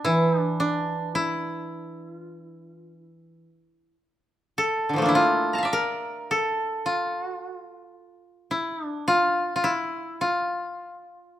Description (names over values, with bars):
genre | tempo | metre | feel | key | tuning
japanese traditional, Japanese chamber music | 53 BPM | 4/4 | rubato | D hirajoshi | A4 = 441 Hz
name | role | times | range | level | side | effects
koto | melody | 0.0-11.4 s | D3 to Bb5 | -24 LUFS | equal | none
koto | accompaniment | 0.0-3.4 s | E3 | -26 LUFS | right 2 dB | none
room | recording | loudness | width
moderate recital hall reverb, RT60 1.3 s | none | -23 LUFS | side -12 dB against mid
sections
0.0-11.4 A section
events
none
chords
none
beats
| 0.06 1.18 2.31 3.43 | 4.55 5.68 6.82 7.93 | 9.06 10.20 11.36